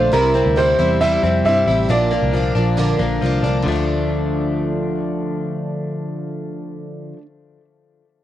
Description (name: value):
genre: indie pop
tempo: 136 BPM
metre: 4/4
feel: straight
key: D minor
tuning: A4 = 440 Hz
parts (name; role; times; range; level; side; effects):
- warm upright piano; melody; 0.0-3.2 s; Bb4 to E5; -18 LUFS; right 2 dB; cassette tape
- picked plugged-in twelve-string acoustic guitar; accompaniment; 0.0-7.3 s; Bb2 to F4; -24 LUFS; right 6 dB; cassette tape
- direct-recorded clean electric guitar; arpeggios; 0.0-7.2 s; Bb2 to F4; -22 LUFS; left 6 dB; cassette tape, tape echo
- vintage muted picked electric bass; bass; 0.0-7.0 s; A1 to G2; -21 LUFS; equal; none
room: light reverb, studio reverb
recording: home recording on cassette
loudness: -16 LUFS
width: side -12 dB against mid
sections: 0.0-3.7 A section; 3.7-7.2 B section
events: none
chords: 0.1 C; 1.9 Bb; 3.7 Dm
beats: | 0.13 0.57 1.01 1.45 | 1.89 2.33 2.77 3.22 | 3.66 4.10 4.54 4.98 | 5.42 5.86 6.30 6.74